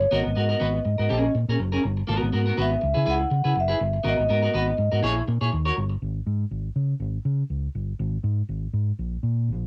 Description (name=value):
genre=disco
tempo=122 BPM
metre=4/4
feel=swing 56% on 16ths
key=unclear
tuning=A4 = 440 Hz
part: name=vibraphone with medium hard mallets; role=melody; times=0.0-5.0 s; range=C#5 to F#5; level=-27 LUFS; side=equal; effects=none
part: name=clean electric guitar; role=accompaniment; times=0.0-5.9 s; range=B3 to C#5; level=-29 LUFS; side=equal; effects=harmonic tremolo, cassette tape
part: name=fingered electric bass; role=bass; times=0.0-9.7 s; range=F#1 to C#3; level=-27 LUFS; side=equal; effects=none
room=moderate booth ambience, RT60 0.2 s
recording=home recording on cassette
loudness=-25 LUFS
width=mono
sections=0.0-6.0 A section; 6.0-9.7 B section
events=none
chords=0.1 G#m9; 1.1 F#add9; 2.1 G#m9; 2.8 C#m7; 4.1 G#m9; 5.0 A#m7b5; 5.5 D#m7; 6.0 N.C.; 6.8 C#5; 8.0 N.C.